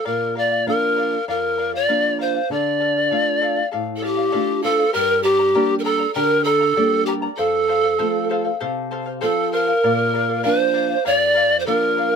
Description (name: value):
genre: andean folk, Andean ensemble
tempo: 98 BPM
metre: 4/4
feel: straight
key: unclear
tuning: A4 = 437 Hz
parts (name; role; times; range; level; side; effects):
- breathy polished pan flute; melody; 0.0-12.2 s; G4 to D5; -18 LUFS; equal; none
- charango; accompaniment; 0.0-12.2 s; G4 to Bb5; -26 LUFS; left 6 dB; none
- nylon-string guitar; accompaniment; 0.1-12.2 s; F2 to F5; -25 LUFS; right 3 dB; none
- breathy reedy pan flute; second line; 4.0-12.2 s; G4 to D5; -25 LUFS; right 7 dB; none
room: light reverb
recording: close, detailed microphones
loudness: -17 LUFS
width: side -6 dB against mid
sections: 0.0-4.9 A section; 4.9-12.2 A section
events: nylon-string guitar fill 4.0-4.9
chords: 0.1 Bb; 2.5 Dm; 4.9 Gm; 7.4 F; 9.8 Bb